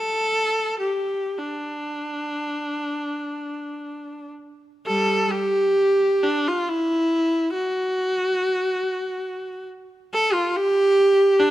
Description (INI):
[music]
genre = classical, free, expressive piece for unaccompanied viola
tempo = 28-49 BPM (dotted quarters)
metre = 6/8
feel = rubato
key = unclear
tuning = A4 = 440 Hz
[part]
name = clear viola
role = solo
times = 0.0-11.5 s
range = G3 to A4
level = -20 LUFS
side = equal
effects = none
[sound]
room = moderate concert hall reverb, RT60 2.2 s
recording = close, detailed microphones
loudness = -20 LUFS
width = side -14 dB against mid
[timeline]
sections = 0.0-4.9 A section; 4.9-11.5 B section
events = none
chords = none